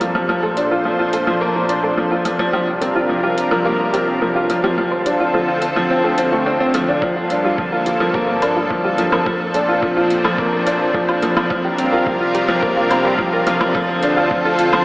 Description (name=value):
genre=piano and strings electronica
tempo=107 BPM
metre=4/4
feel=straight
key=unclear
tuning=A4 = 440 Hz
part: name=lush unison pad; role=sustained chords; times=0.0-14.8 s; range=D2 to C5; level=-19 LUFS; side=equal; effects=chorus, sidechain pumping
part: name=analog pluck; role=arpeggios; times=0.0-14.8 s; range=F4 to D5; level=-24 LUFS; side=equal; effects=chorus, sidechain pumping, tape echo
part: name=bright upright piano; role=riff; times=0.0-14.8 s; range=F3 to F4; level=-17 LUFS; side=equal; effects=tape echo
part: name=electronic hi-hat and woodblock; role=drums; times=0.0-14.8 s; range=none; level=-26 LUFS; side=equal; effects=overdrive, studio reverb
part: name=electronic kick drum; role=drums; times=7.0-14.4 s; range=none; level=-29 LUFS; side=equal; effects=studio reverb
room=wet lush hall reverb, RT60 2.3 s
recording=dreamy mix soaked in reverb, AM radio sound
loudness=-15 LUFS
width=side -21 dB against mid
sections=0.0-14.8 A section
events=build-up 0.0-14.8; filter sweep on synth arpeggio sound 0.0-14.8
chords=0.3 Bbmaj7; 2.5 C7sus4; 4.8 Dm7; 7.0 Gm7; 9.3 Bbmaj7; 11.5 C7sus4; 13.8 Dm7